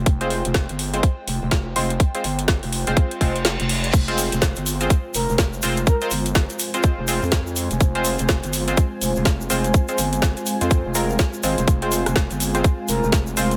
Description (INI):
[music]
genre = bass house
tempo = 124 BPM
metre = 4/4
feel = swing 60% on 16ths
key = F minor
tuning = A4 = 441 Hz
[part]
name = growling FM bass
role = bass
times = 0.0-13.6 s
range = F1 to F2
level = -28 LUFS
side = equal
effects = overdrive, sidechain pumping
[part]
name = granular cloud pad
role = texture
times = 0.0-13.6 s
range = Ab3 to Ab5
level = -34 LUFS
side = equal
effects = built-in reverb, sidechain pumping
[part]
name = electronic kick drum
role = drums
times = 0.1-13.2 s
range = none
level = -20 LUFS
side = equal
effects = none
[part]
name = garage drum kit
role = drums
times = 0.1-13.6 s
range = crash cymbal, hi-hat, rim click, snare drum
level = -28 LUFS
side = equal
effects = none
[part]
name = band-passed chord stab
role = stabs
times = 0.2-13.5 s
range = Ab3 to C5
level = -28 LUFS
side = equal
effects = chorus, cassette tape, sidechain pumping, digital delay
[part]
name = reverse cymbal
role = sound effects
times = 3.2-3.9 s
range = none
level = -31 LUFS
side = equal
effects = none
[part]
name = dark analog pad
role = sustained chords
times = 5.3-13.6 s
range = Ab3 to F5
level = -33 LUFS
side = equal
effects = chorus, sidechain pumping
[part]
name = tube shaker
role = percussion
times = 3.9-13.6 s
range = none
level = -32 LUFS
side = equal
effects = none
[part]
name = breathy flute-like synth lead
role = melody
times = 5.1-6.1, 12.9-13.1 s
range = Bb4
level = -30 LUFS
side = equal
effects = lush chorus, vintage 12-bit sampler grit
[sound]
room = light reverb, digital ambience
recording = none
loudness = -21 LUFS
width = mono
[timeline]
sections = 0.0-13.6 A section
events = fade-in on ambient pad 0.0-13.6; reverse cymbal 3.2-3.9; kick drops out 3.5-3.9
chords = 0.0 Fm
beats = | 0.06 0.55 1.03 1.52 | 2.00 2.48 2.97 3.45 | 3.94 4.42 4.90 5.39 | 5.87 6.35 6.84 7.32 | 7.81 8.29 8.77 9.26 | 9.74 10.22 10.71 11.19 | 11.68 12.16 12.64 13.13